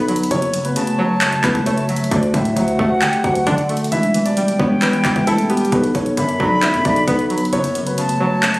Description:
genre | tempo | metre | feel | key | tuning
hip hop, trap | 133 BPM | 4/4 | half-time | B minor | A4 = 440 Hz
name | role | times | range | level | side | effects
dark baby grand piano | melody | 0.0-8.6 s | G3 to G5 | -21 LUFS | equal | low-pass filter, tape echo
concert flute | second line | 0.0-8.6 s | E5 to B5 | -23 LUFS | equal | tape echo
string-like resonator pluck | accompaniment | 0.0-8.6 s | F#2 to E4 | -22 LUFS | equal | chorus, low-pass filter
warbly tape-like pad | sustained chords | 0.0-8.6 s | C#3 to G4 | -24 LUFS | equal | chorus, built-in reverb
growling 808-style bass | bass | 0.0-8.6 s | E1 to D3 | -21 LUFS | equal | none
trap drum kit | drums | 0.1-8.6 s | handclaps, hi-hat, kick drum | -22 LUFS | equal | overdrive
room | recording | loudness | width
little or no reverb | recorded on a phone in the room, studio reverb | -15 LUFS | side -21 dB against mid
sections
0.0-8.6 A section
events
none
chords
0.3 F#m; 2.1 D; 3.9 Em; 5.7 Bm; 7.5 F#m

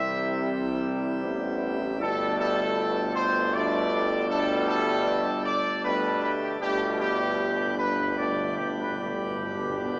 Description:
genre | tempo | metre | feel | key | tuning
classical | 78 BPM | 3/4 | straight | unclear | A4 = 439 Hz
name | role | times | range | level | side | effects
mellow trumpet section | melody | 0.0-10.0 s | G4 to E5 | -31 LUFS | equal | none
clear trombone section | sustained chords | 0.0-10.0 s | B2 to G3 | -34 LUFS | equal | none
mellow French horn section | sustained chords | 0.0-10.0 s | A3 to E4 | -36 LUFS | equal | none
pipe organ, plenum | sustained chords | 0.0-10.0 s | D3 to E5 | -36 LUFS | equal | none
mellow tuba | bass | 0.0-10.0 s | G1 to C2 | -34 LUFS | equal | none
timpani | percussion | 6.6-10.0 s | G2 | -46 LUFS | equal | none
room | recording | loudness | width
wet scoring stage reverb, RT60 1.8 s | small speaker sound | -27 LUFS | mono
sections
0.0-10.0 A section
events
timpani fill 6.6-10.0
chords
0.0 C; 2.0 Gadd9

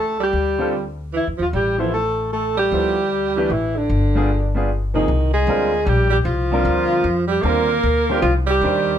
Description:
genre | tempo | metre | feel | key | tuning
modal jazz | 152 BPM | 3/4 | swing 64% on 8ths | D dorian, C minor from 5.1 s | A4 = 440 Hz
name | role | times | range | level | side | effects
breathy alto saxophone | melody | 0.0-9.0 s | D4 to Bb4 | -21 LUFS | left 2 dB | none
breathy tenor saxophone | second line | 0.0-9.0 s | D3 to Bb3 | -23 LUFS | right 6 dB | none
upright bass | bass | 0.0-9.0 s | G1 to F2 | -22 LUFS | left 1 dB | none
clear grand piano | accompaniment | 0.6-9.0 s | C3 to C5 | -23 LUFS | right 1 dB | none
room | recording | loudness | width
moderate club reverb, RT60 0.7 s | none | -17 LUFS | side -9 dB against mid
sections
0.0-5.1 A section; 5.1-9.0 B section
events
none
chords
0.0 Dsus4; 3.9 G7b9; 5.1 Cm11

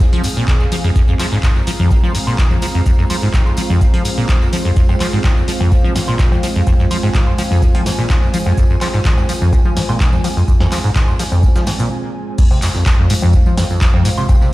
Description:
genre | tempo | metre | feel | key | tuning
acid house | 126 BPM | 4/4 | straight | F minor | A4 = 442 Hz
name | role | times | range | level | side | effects
dark analog pad | sustained chords | 0.1-14.5 s | Ab3 to Bb5 | -24 LUFS | right 1 dB | chorus, sidechain pumping
liquid acid bass | riff | 0.0-14.5 s | F2 to F3 | -17 LUFS | equal | tube saturation, wide subtle chorus, sidechain pumping, digital delay
dusty soul sampler-style drum kit | drums | 0.0-14.5 s | hi-hat, shaker, snare drum | -35 LUFS | right 1 dB | none
electronic kick drum | drums | 0.0-14.4 s | none | -14 LUFS | equal | none
tambourine | percussion | 0.0-14.5 s | none | -35 LUFS | right 4 dB | none
granular cloud pad | texture | 0.0-11.9 s | C4 to Ab5 | -28 LUFS | right 2 dB | built-in reverb, sidechain pumping
punchy analog drum machine | drums | 0.2-14.4 s | congas, cowbell, crash cymbal, handclaps, hi-hat, snare drum, woodblock | -22 LUFS | left 2 dB | none
room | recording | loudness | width
digital ambience | played on a big sound system in a bare room, stone room reverb | -12 LUFS | side -18 dB against mid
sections
0.0-12.4 A section; 12.4-14.5 B section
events
break 11.9-12.4; drop 12.4-14.5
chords
0.0 Fm

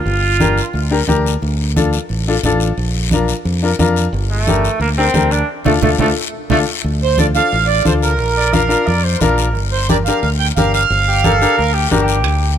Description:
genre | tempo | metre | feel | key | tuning
latin, cumbia | 177 BPM | 4/4 | straight | unclear | A4 = 440 Hz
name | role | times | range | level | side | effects
warm trumpet | second line | 0.0-0.9, 4.3-12.5 s | A3 to F5 | -20 LUFS | right 2 dB | none
fingered electric bass | bass | 0.1-12.6 s | G1 to F2 | -17 LUFS | equal | none
congas | percussion | 0.1-12.4 s | none | -21 LUFS | right 2 dB | none
guiro | percussion | 0.1-12.6 s | none | -26 LUFS | left 8 dB | none
bright upright piano | accompaniment | 0.4-12.2 s | D4 to Bb4 | -19 LUFS | left 5 dB | none
accordion | melody | 7.0-11.7 s | Bb4 to G5 | -17 LUFS | right 6 dB | none
timbales | percussion | 12.2-12.4 s | none | -23 LUFS | right 9 dB | none
room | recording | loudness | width
light reverb | none | -13 LUFS | side -9 dB against mid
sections
0.0-6.8 A section; 6.8-12.6 B section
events
trumpet solo 0.0-6.8; band accent 5.5-6.8; drum fill 6.2-6.8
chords
0.0 Gm; 1.4 Dm; 2.8 Bb; 4.1 Gm; 5.5 Dm; 8.2 Bb; 9.6 Gm

